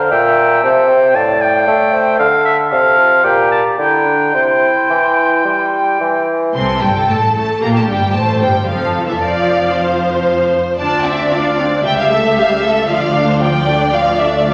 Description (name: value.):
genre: classical.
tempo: 114 BPM.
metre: 4/4.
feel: rubato.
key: F major.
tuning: A4 = 440 Hz.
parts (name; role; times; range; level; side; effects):
hollow concert flute; second line; 0.0-6.3 s; F5 to C6; -25 LUFS; equal; none.
warm clarinet; second line; 0.0-6.0 s; D4 to E5; -22 LUFS; equal; none.
clear bassoon; accompaniment; 0.0-6.5 s; A2 to A3; -17 LUFS; equal; none.
clear oboe; second line; 0.1-6.2 s; E5 to A5; -17 LUFS; equal; none.
warm symphonic violin section; melody; 6.5-14.5 s; C5 to C6; -21 LUFS; equal; none.
warm symphonic violin section; second line; 6.6-14.5 s; G4 to G5; -19 LUFS; equal; none.
warm studio viola section; accompaniment; 6.6-14.5 s; E3 to A4; -21 LUFS; equal; none.
rich symphonic cello section; bass; 6.6-14.5 s; C#2 to C3; -24 LUFS; equal; none.
rich symphonic double bass section; bass; 6.6-14.5 s; F1 to D2; -26 LUFS; equal; none.
room: wet recital hall reverb, RT60 1.4 s.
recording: none.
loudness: -14 LUFS.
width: mono.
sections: 0.0-6.6 A section; 6.6-14.5 B section.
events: none.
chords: 0.1 C7/Bb; 1.1 F/A; 2.2 Dm; 3.2 Gm/Bb; 4.3 C; 6.6 Gsus24; 7.6 C5; 8.7 F; 10.8 Dm7; 11.8 A7/C#; 12.9 Dm.